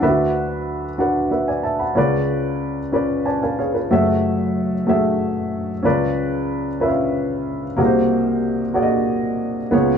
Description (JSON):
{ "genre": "gospel", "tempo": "62 BPM (dotted quarters)", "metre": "6/8", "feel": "straight", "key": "unclear", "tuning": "A4 = 440 Hz", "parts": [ { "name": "warm upright piano", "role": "solo", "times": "0.0-10.0 s", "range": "F#1 to B5", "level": "-17 LUFS", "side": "equal", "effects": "none" } ], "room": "wet studio reverb, RT60 0.7 s", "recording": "band playing live in one room", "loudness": "-18 LUFS", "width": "side -7 dB against mid", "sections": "0.0-10.0 A section", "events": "upright piano fill 2.9-3.9", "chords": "0.0 D69; 2.0 C#7b9; 3.9 F#m9; 5.8 C#7b9; 7.8 G#9/B#" }